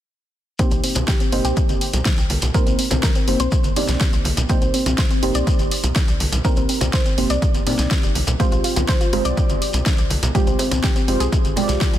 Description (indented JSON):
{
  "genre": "progressive house",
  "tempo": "123 BPM",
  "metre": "4/4",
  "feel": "straight",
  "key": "C minor",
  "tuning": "A4 = 440 Hz",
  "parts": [
    { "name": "soft round pluck", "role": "arpeggios", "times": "0.6-12.0 s", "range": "C4 to D5", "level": "-26 LUFS", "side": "left 1 dB", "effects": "chorus, sidechain pumping, tape echo" },
    { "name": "deep mellow chord stab", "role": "stabs", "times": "0.6-12.0 s", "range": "Ab3 to D5", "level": "-24 LUFS", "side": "right 2 dB", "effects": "chorus, phaser, sidechain pumping, tape echo" },
    { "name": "deep house drum kit", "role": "drums", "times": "0.6-12.0 s", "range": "hi-hat, snare drum", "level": "-25 LUFS", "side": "equal", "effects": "overdrive" },
    { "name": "electronic kick drum", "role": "drums", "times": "0.6-11.9 s", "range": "none", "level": "-20 LUFS", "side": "equal", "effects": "overdrive" },
    { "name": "shekere", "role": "percussion", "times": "0.6-12.0 s", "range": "none", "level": "-33 LUFS", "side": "left 2 dB", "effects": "none" },
    { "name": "tight sequencer bass", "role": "bass", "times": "0.7-12.0 s", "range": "G1 to C2", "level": "-22 LUFS", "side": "equal", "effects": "sidechain pumping" },
    { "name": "congas and bongos", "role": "percussion", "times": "1.0-11.8 s", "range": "none", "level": "-29 LUFS", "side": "right 2 dB", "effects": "sidechain pumping on perc" }
  ],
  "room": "light reverb, digital ambience",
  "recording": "dense, heavily limited modern master",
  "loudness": "-16 LUFS",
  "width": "side -12 dB against mid",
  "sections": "0.6-12.0 A section",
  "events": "none",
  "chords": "0.6 Cm7; 8.4 Fmadd9",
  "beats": "| 0.59 1.08 1.57 2.06 | 2.54 3.03 3.52 4.01 | 4.50 4.98 5.47 5.96 | 6.45 6.93 7.42 7.91 | 8.40 8.88 9.37 9.86 | 10.35 10.84 11.32 11.81"
}